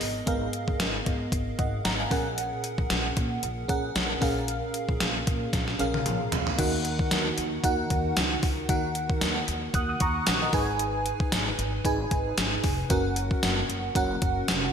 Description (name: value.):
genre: 1980s-style pop.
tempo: 114 BPM.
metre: 4/4.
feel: swing 55% on 16ths.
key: Eb minor.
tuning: A4 = 441 Hz.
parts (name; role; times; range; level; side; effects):
FM electric piano with soft pad layer; accompaniment; 0.0-14.7 s; Ab2 to Gb6; -28 LUFS; right 1 dB; chorus.
upright bass; bass; 0.0-14.7 s; F1 to Bb2; -33 LUFS; equal; none.
gated 80s digital drum machine; drums; 0.0-14.6 s; crash cymbal, hi-hat, kick drum, snare drum, tambourine, toms; -27 LUFS; equal; gated reverb, gated reverb snare, overdrive.
room: moderate lush hall reverb, RT60 2.0 s, digital ambience.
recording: bright 1980s-style digital production.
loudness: -24 LUFS.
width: side -7 dB against mid.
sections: 0.0-6.6 A section; 6.6-14.7 B section.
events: drum fill 5.5-6.6.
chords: 0.0 Abmadd9; 2.1 Gbadd9/Bb; 4.2 Bbm7; 6.6 Ebm; 10.5 Abm; 12.9 Gb.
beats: | 0.27 0.80 1.32 1.85 | 2.38 2.90 3.43 3.96 | 4.48 5.01 5.53 6.06 | 6.59 7.11 7.64 8.16 | 8.69 9.22 9.74 10.27 | 10.80 11.32 11.85 12.38 | 12.90 13.43 13.96 14.48.